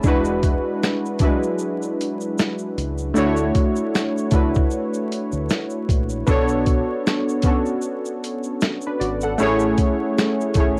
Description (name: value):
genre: lo-fi hip hop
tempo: 77 BPM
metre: 4/4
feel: swing 56% on 16ths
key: B dorian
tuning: A4 = 439 Hz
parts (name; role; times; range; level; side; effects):
- warm analog keys; accompaniment; 0.0-10.8 s; F#3 to F#5; -23 LUFS; equal; chorus, cassette tape
- deep dub fingered electric bass; bass; 0.0-10.8 s; E1 to D2; -30 LUFS; equal; none
- boom bap sampler-style drum kit; drums; 0.0-10.8 s; finger snaps, hi-hat, kick drum, shaker, snare drum; -23 LUFS; equal; cassette tape
room: light reverb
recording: home recording on cassette, vinyl crackle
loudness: -21 LUFS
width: mono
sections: 0.0-10.8 A section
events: none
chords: 0.0 E9; 3.2 Dmaj9; 6.3 Bm9; 9.4 Amaj7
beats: | 0.04 0.82 1.60 2.38 | 3.16 3.94 4.72 5.50 | 6.28 7.05 7.83 8.61 | 9.39 10.17